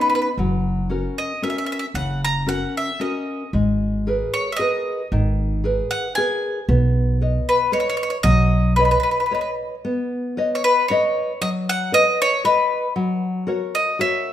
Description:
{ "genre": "italian folk, Italian serenade", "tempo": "115 BPM", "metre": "3/4", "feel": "straight", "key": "B major", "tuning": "A4 = 440 Hz", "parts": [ { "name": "bowl-back mandolin", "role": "melody", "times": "0.0-14.3 s", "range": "B4 to A#5", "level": "-20 LUFS", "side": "left 1 dB", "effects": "none" }, { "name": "nylon-string guitar", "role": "accompaniment", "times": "0.0-14.3 s", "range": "C#3 to D#5", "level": "-23 LUFS", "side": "left 1 dB", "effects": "none" }, { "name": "upright bass", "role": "bass", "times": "0.4-8.9 s", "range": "F#1 to B1", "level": "-20 LUFS", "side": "right 1 dB", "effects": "none" } ], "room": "moderate recital hall reverb, RT60 1.6 s", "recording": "minimal, uncompressed stereo recording", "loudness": "-18 LUFS", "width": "side -11 dB against mid", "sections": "0.0-9.8 A section; 9.8-14.3 A section", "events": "none", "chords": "0.4 F#; 3.5 G#madd9; 6.7 Badd9; 13.0 F#", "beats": "| 0.38 0.90 1.42 | 1.94 2.47 3.00 | 3.53 4.06 4.59 | 5.12 5.64 6.17 | 6.69 7.21 7.73 | 8.25 8.77 9.30 | 9.84 10.36 10.88 | 11.40 11.92 12.44 | 12.96 13.47 13.99" }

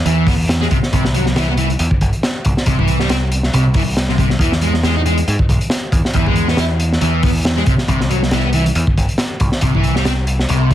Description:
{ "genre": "breakbeat, breaks", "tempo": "138 BPM", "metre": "4/4", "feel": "swing 55% on 16ths", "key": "unclear", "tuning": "A4 = 437 Hz", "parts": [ { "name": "fuzz guitar", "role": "riff", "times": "0.1-10.7 s", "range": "C3 to E4", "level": "-19 LUFS", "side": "equal", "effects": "distortion, ping-pong delay" }, { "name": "growling picked electric bass", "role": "bass", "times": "0.1-10.7 s", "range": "G1 to G#2", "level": "-18 LUFS", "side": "equal", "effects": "overdrive" }, { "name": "crunchy breakbeat drum kit", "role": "drums", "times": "0.1-10.7 s", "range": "hi-hat, kick drum, snare drum", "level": "-16 LUFS", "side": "equal", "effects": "none" } ], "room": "light reverb, small room ambience", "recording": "dense, heavily limited modern master, vinyl crackle", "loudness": "-13 LUFS", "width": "side -12 dB against mid", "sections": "0.0-10.7 A section", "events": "none", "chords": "0.0 N.C.; 0.7 C; 4.4 E; 7.7 C", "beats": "0.06 0.49 | 0.93 1.36 1.80 2.23 | 2.67 3.10 3.54 3.97 | 4.41 4.84 5.27 5.71 | 6.14 6.58 7.01 7.45 | 7.88 8.32 8.75 9.19 | 9.62 10.06 10.49" }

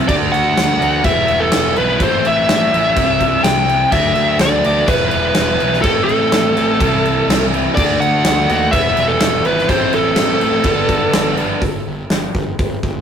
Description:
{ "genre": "classic rock", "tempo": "125 BPM", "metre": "4/4", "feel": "straight", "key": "G major", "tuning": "A4 = 442 Hz", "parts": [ { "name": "distorted electric guitar", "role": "riff", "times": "0.0-11.6 s", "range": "G2 to F#4", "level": "-21 LUFS", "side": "left 4 dB", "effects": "distortion" }, { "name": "overdriven electric guitar", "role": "riff", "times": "0.0-11.6 s", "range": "G2 to F#4", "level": "-20 LUFS", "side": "right 4 dB", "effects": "none" }, { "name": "smooth overdriven lead guitar", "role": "melody", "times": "0.1-11.3 s", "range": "A4 to G5", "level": "-16 LUFS", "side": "equal", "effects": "digital delay" }, { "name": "fuzz picked electric bass", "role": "bass", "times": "0.1-13.0 s", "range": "E1 to Eb2", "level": "-23 LUFS", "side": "equal", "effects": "overdrive" }, { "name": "big rock drum kit", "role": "drums", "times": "0.1-12.9 s", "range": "crash cymbal, hi-hat, kick drum, snare drum", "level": "-19 LUFS", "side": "equal", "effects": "none" } ], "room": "moderate small room reverb, RT60 0.6 s", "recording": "rough rehearsal-room recording, warm saturation", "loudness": "-12 LUFS", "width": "side -8 dB against mid", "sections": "0.0-11.6 A section; 11.6-13.0 B section", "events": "none", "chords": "0.1 D; 1.0 Em; 2.0 Am; 3.0 C; 3.9 D; 4.9 Em; 5.8 Am; 6.8 C; 7.8 D; 8.7 Em; 9.7 Am; 10.7 G; 11.6 N.C.", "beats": "| 0.09 0.57 1.05 1.53 | 2.01 2.48 2.96 3.44 | 3.92 4.40 4.88 5.36 | 5.84 6.32 6.80 7.29 | 7.76 8.25 8.73 9.21 | 9.69 10.17 10.65 11.14 | 11.62 12.10 12.59" }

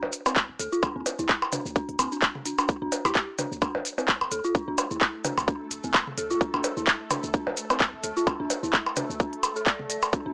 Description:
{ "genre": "minimal techno", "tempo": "129 BPM", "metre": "4/4", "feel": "swing 56% on 16ths", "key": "unclear", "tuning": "A4 = 437 Hz", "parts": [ { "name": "punchy sub bass", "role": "bass", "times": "0.0-10.3 s", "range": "D1 to D2", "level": "-39 LUFS", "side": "equal", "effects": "sidechain pumping" }, { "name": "electronic percussion blips and toms", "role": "percussion", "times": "0.0-10.1 s", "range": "none", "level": "-27 LUFS", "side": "equal", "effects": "overdrive" }, { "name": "minimal click drum kit", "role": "drums", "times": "0.1-10.0 s", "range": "handclaps, hi-hat", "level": "-24 LUFS", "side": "equal", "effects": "none" }, { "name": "maracas", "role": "percussion", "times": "0.1-10.2 s", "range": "none", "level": "-36 LUFS", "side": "equal", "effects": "none" }, { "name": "dark detuned synth bell", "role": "riff", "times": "0.3-10.3 s", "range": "C4 to D5", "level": "-31 LUFS", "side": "equal", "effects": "chorus, sidechain pumping, analog delay" }, { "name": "electronic kick drum", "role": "drums", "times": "0.4-10.2 s", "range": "none", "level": "-26 LUFS", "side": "equal", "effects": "none" }, { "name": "swarming drone", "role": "texture", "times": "4.3-10.3 s", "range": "A3 to A4", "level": "-39 LUFS", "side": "equal", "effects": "built-in reverb, phaser, sidechain pumping" }, { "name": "hollow square pluck", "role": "melody", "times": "3.0-3.4 s", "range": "G4", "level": "-32 LUFS", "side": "equal", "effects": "ensemble chorus, analog delay" } ], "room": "light reverb", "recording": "dry, gritty hardware recording, small speaker sound", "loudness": "-24 LUFS", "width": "side -31 dB against mid", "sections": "0.0-10.3 A section", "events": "none", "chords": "0.0 D5", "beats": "0.36 | 0.83 1.29 1.76 2.22 | 2.69 3.15 3.62 4.08 | 4.55 5.01 5.48 5.94 | 6.41 6.87 7.34 7.80 | 8.27 8.73 9.20 9.66 | 10.13" }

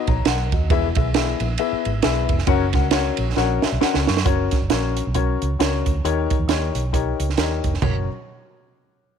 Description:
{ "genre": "uptempo 1960s-style soul", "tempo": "134 BPM", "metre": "4/4", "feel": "swing 59% on 8ths", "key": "F# mixolydian", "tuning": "A4 = 442 Hz", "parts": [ { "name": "dark upright piano", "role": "accompaniment", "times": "0.0-8.1 s", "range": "F#2 to C#6", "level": "-23 LUFS", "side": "left 12 dB", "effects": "none" }, { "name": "vintage muted fingered electric bass", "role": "bass", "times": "0.1-8.1 s", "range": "E1 to F#2", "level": "-23 LUFS", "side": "right 1 dB", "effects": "none" }, { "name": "compact cocktail drum kit", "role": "drums", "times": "0.1-7.9 s", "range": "crash cymbal, hi-hat, kick drum, ride cymbal, snare drum, toms", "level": "-22 LUFS", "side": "right 5 dB", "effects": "none" } ], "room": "light reverb, small room ambience", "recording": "1960s-style stereo", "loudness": "-18 LUFS", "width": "side -7 dB against mid", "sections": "0.0-4.3 A section; 4.3-7.8 B section; 7.8-9.2 C section", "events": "drum fill 3.4-4.3; upright piano fill 3.4-4.3", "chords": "0.0 F#; 0.7 E; 2.5 F#; 6.0 D#7; 7.8 F#", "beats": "0.25 | 0.70 1.14 1.58 2.03 | 2.47 2.92 3.36 3.81 | 4.25 4.70 5.14 5.59 | 6.04 6.49 6.93 7.38 | 7.83" }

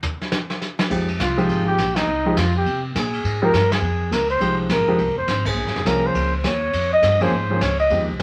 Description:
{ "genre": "jazz, small-group swing and bop", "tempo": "206 BPM", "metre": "4/4", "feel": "swing 62% on 8ths", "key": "F minor", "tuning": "A4 = 440 Hz", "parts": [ { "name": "vintage brush drum kit", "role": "drums", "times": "0.0-8.2 s", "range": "crash cymbal, hi-hat, kick drum, ride cymbal, snare drum, toms", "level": "-28 LUFS", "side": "equal", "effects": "none" }, { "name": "warm grand piano", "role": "accompaniment", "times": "0.9-8.2 s", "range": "F3 to Ab4", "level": "-25 LUFS", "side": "equal", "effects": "none" }, { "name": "upright bass", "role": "bass", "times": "0.9-8.2 s", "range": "F1 to C3", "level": "-27 LUFS", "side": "equal", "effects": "none" }, { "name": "warm flugelhorn", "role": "melody", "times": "1.2-8.1 s", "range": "Eb4 to Eb5", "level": "-23 LUFS", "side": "equal", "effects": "none" } ], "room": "moderate studio reverb, RT60 0.6 s", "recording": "vinyl crackle", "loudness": "-20 LUFS", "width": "mono", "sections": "0.9-8.2 A section", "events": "band accent 1.9, 3.7, 5.4", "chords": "0.0 N.C.; 0.9 Fm9", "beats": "0.03 0.32 0.61 | 0.90 1.20 1.49 1.78 | 2.07 2.36 2.65 2.94 | 3.23 3.53 3.82 4.11 | 4.40 4.69 4.98 5.28 | 5.57 5.86 6.15 6.44 | 6.73 7.02 7.32 7.61 | 7.90 8.19" }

